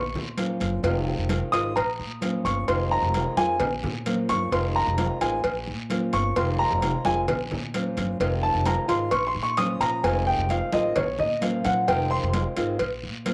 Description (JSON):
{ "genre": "latin, Cuban son and guajira", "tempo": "130 BPM", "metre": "4/4", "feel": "straight", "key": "F minor", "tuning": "A4 = 436 Hz", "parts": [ { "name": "warm baby grand piano", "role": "arpeggios", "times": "0.0-12.2 s", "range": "Db5 to Eb6", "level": "-28 LUFS", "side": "equal", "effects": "slapback echo" }, { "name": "upright bass", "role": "bass", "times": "0.0-13.3 s", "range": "F1 to Bb2", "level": "-32 LUFS", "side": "equal", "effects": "none" }, { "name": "congas", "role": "percussion", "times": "0.2-13.3 s", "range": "none", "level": "-34 LUFS", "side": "equal", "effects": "none" }, { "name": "flamenco guitar", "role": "accompaniment", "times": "0.4-13.3 s", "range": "C3 to F4", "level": "-31 LUFS", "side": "equal", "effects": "none" }, { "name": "cowbell", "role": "percussion", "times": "0.4-13.3 s", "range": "none", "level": "-33 LUFS", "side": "equal", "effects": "none" }, { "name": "guiro", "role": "percussion", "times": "0.4-13.3 s", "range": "none", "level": "-43 LUFS", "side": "equal", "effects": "none" } ], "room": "moderate spring reverb, RT60 1.7 s", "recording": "none", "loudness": "-25 LUFS", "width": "mono", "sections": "0.0-13.3 A section", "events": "grand piano solo 0.0-13.3", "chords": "0.0 Bbm; 0.8 Fm7; 1.8 Bbm; 2.7 Fm7; 3.6 Bbm; 4.5 Fm7; 5.4 Bbm; 6.4 Fm7; 7.3 Bbm; 8.2 Fm7; 9.1 Bbm; 10.0 Fm7; 11.0 Bbm; 11.9 Fm7; 12.8 Bbm", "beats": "0.38 | 0.84 1.30 1.76 2.22 | 2.68 3.14 3.60 4.06 | 4.52 4.98 5.44 5.90 | 6.36 6.82 7.28 7.74 | 8.20 8.66 9.12 9.58 | 10.04 10.50 10.96 11.42 | 11.88 12.34 12.80 13.26" }